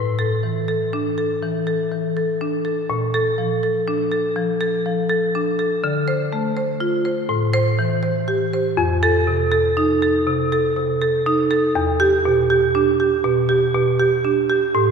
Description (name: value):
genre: classical, contemporary piece for solo marimba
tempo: 81 BPM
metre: 4/4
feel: rubato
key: E minor from 8.8 s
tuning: A4 = 440 Hz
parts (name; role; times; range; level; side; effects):
- marimba with medium hard mallets; solo; 0.0-14.9 s; E2 to C5; -17 LUFS; right 1 dB; none
room: wet church reverb, RT60 2.9 s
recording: minimal, uncompressed stereo recording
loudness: -17 LUFS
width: side -6 dB against mid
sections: 0.0-14.9 A section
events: none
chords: 0.0 Asus4; 2.9 Bbmaj7; 5.8 Dm7; 7.3 Am7; 8.8 F7; 11.8 Em7